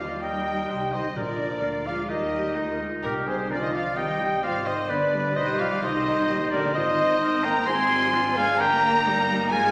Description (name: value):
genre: quick classical-period movement for symphony orchestra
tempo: 129 BPM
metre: 4/4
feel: rubato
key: Eb major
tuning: A4 = 438 Hz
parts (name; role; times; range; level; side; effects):
- warm chamber violin section; melody; 0.0-9.7 s; Bb4 to C6; -35 LUFS; equal; none
- mellow clarinet; second line; 0.0-9.7 s; Bb4 to C6; -32 LUFS; equal; none
- mellow hollow small flute group; second line; 0.0-9.7 s; Bb4 to C6; -33 LUFS; equal; none
- rich chamber violin section; second line; 0.0-9.7 s; Bb4 to C6; -39 LUFS; equal; none
- dark chamber viola section; accompaniment; 0.0-9.7 s; Eb3 to G4; -35 LUFS; equal; none
- mellow French horn section; sustained chords; 0.0-9.7 s; Bb3 to C5; -35 LUFS; equal; none
- clear trumpet; stabs; 0.0-9.7 s; G4 to Ab5; -30 LUFS; equal; none
- clear studio cello section; bass; 0.0-9.7 s; Bb2 to C4; -37 LUFS; equal; none
- clear studio double bass section; bass; 0.0-9.7 s; G1 to Eb2; -41 LUFS; equal; none
- clear oboe; second line; 0.2-9.7 s; Eb4 to C5; -36 LUFS; equal; none
- timpani; percussion; 1.2-1.8 s; Bb2; -43 LUFS; equal; none
room: wet scoring stage reverb, RT60 1.5 s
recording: none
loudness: -24 LUFS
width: mono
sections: 0.0-9.7 A section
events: none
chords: 0.0 Eb; 1.2 Bb7; 2.1 Eb; 3.0 Cm; 4.9 G7; 5.8 Cm; 6.7 Ab; 7.7 Fm69/Ab; 8.6 Eb/G